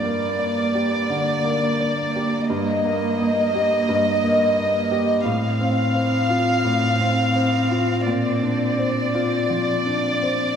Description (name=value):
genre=neoclassical piano and strings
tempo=86 BPM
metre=4/4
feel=rubato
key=G minor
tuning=A4 = 440 Hz
part: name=warm chamber violin section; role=melody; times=0.0-10.6 s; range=D5 to F5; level=-22 LUFS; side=equal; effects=none
part: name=dark cello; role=second line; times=0.0-10.6 s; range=Bb3 to C4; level=-25 LUFS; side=right 1 dB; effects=none
part: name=felt-muted upright piano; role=accompaniment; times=0.0-10.6 s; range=G2 to Eb5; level=-23 LUFS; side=left 1 dB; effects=none
room=wet concert hall reverb, RT60 1.9 s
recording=recorded in a church or concert hall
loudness=-18 LUFS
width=side -8 dB against mid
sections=0.0-10.6 A section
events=none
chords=0.0 Gm; 2.5 Eb/G; 5.3 F/A; 8.1 Bbadd9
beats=0.38 1.08 1.78 | 2.48 3.17 3.87 4.57 | 5.26 5.96 6.65 7.36 | 8.06 8.78 9.49 10.20